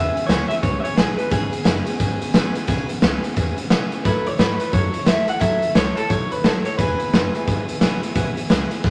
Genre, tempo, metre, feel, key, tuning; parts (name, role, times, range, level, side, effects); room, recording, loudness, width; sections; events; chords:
rockabilly; 175 BPM; 4/4; swing 62% on 8ths; E major; A4 = 440 Hz
electric guitar through a small old amp; melody; 0.0-8.1 s; G#4 to F#5; -26 LUFS; equal
picked steel-string acoustic guitar; accompaniment; 0.0-8.9 s; C#3 to C#5; -28 LUFS; equal
upright bass; bass; 0.0-8.9 s; E1 to B2; -30 LUFS; equal
raw garage drum kit; drums; 0.2-8.9 s; hi-hat, kick drum, snare drum; -22 LUFS; equal
moderate studio reverb, RT60 0.5 s; -20 LUFS; mono
0.0-8.9 A section
0.0 E6; 4.0 A6; 6.8 E6